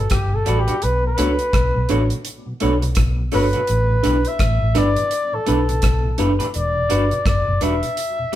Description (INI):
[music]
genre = lovers rock reggae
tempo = 84 BPM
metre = 4/4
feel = swing 59% on 16ths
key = E dorian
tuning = A4 = 440 Hz
[part]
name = warm flugelhorn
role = melody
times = 0.0-8.4 s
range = G4 to E5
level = -22 LUFS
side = left 1 dB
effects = none
[part]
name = mellow tonewheel organ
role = accompaniment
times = 0.0-8.4 s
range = E2 to F#4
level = -31 LUFS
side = equal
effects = slow rotary speaker, dub echo
[part]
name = vintage muted fingered electric bass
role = bass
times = 0.0-7.8 s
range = E1 to C#2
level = -20 LUFS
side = equal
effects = none
[part]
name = damped 70s drum kit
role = drums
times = 0.1-8.4 s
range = hi-hat, kick drum, rim click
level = -23 LUFS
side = equal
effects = none
[part]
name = mellow tine electric piano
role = accompaniment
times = 0.5-8.4 s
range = D4 to D5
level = -23 LUFS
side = equal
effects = medium stereo tremolo
[part]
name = electric guitar through a small old amp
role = stabs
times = 0.5-8.4 s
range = G3 to B4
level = -27 LUFS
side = right 1 dB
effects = none
[sound]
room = moderate stone room reverb, RT60 1.0 s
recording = band playing live in one room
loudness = -16 LUFS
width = side -13 dB against mid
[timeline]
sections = 0.0-6.5 A section; 6.5-8.4 B section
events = flugelhorn solo 0.0-6.5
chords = 0.0 Em9; 0.8 Bm7; 3.7 A9sus4; 6.5 Em9